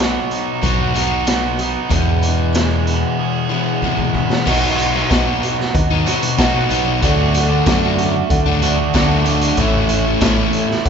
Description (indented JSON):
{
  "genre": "classic rock",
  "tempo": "94 BPM",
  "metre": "4/4",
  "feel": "straight",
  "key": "unclear",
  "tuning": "A4 = 440 Hz",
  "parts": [
    { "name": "picked steel-string acoustic guitar", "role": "accompaniment", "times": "0.0-10.9 s", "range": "E2 to G#4", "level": "-28 LUFS", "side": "right 5 dB", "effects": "none" },
    { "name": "crunchy overdriven guitar", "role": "riff", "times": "0.0-10.7 s", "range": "E2 to E4", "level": "-20 LUFS", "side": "left 7 dB", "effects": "none" },
    { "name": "raw garage guitar", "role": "riff", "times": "0.0-10.9 s", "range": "E2 to G#4", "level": "-21 LUFS", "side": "right 7 dB", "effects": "overdrive" },
    { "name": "fingered electric bass", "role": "bass", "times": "0.0-10.9 s", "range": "A1 to B2", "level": "-21 LUFS", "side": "equal", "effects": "none" },
    { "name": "raw garage drum kit", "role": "drums", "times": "0.0-10.9 s", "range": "crash cymbal, hi-hat, kick drum, snare drum", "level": "-20 LUFS", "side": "equal", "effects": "none" },
    { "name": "reed electric piano", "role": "accompaniment", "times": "4.5-10.9 s", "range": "A4 to A5", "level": "-25 LUFS", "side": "left 2 dB", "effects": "fast tremolo" },
    { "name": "tambourine", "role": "percussion", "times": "4.5-10.4 s", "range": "none", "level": "-35 LUFS", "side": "right 7 dB", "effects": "none" }
  ],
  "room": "wet large studio reverb, RT60 1.3 s",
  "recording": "band playing live in one room, nothing above 7.7 kHz",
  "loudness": "-14 LUFS",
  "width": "side -6 dB against mid",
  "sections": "0.0-4.5 A section; 4.5-10.9 B section",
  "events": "drum fill 3.8-4.5; reed electric piano fill 8.6-9.6",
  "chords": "0.0 B; 1.9 E; 4.5 B; 7.0 D; 9.6 A",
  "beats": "0.00 0.64 1.28 | 1.92 2.56 3.19 3.83 | 4.47 5.11 5.75 6.39 | 7.03 7.67 8.31 8.94 | 9.58 10.22 10.86"
}